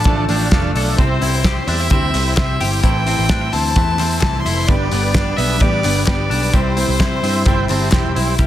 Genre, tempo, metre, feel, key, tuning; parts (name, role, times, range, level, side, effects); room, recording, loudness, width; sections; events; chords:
jangly indie pop; 130 BPM; 4/4; straight; C major; A4 = 440 Hz
warm violin; melody; 0.0-8.2 s; C5 to C6; -22 LUFS; left 1 dB; digital delay
fingerpicked steel-string acoustic guitar; accompaniment; 0.0-8.5 s; G2 to E4; -25 LUFS; right 6 dB
overdriven combo organ; accompaniment; 0.0-8.4 s; B3 to C6; -25 LUFS; right 5 dB
twelve-string electric guitar; arpeggios; 0.0-8.5 s; E3 to A4; -23 LUFS; left 9 dB; warbly pitch drift, digital delay
cloth-damped thuddy drum kit; drums; 0.0-8.5 s; hi-hat, kick drum, snare drum; -18 LUFS; equal
vintage muted picked electric bass; bass; 0.1-8.5 s; E1 to C3; -20 LUFS; equal
group handclap; percussion; 1.5-8.0 s; -31 LUFS; left 3 dB
light reverb, studio reverb; dense, heavily limited modern master; -14 LUFS; side -12 dB against mid
0.0-8.4 A section
transistor combo organ fill 0.0-1.0, 7.0-8.4
0.0 Dm; 1.0 C; 2.8 Am; 4.7 G; 6.5 C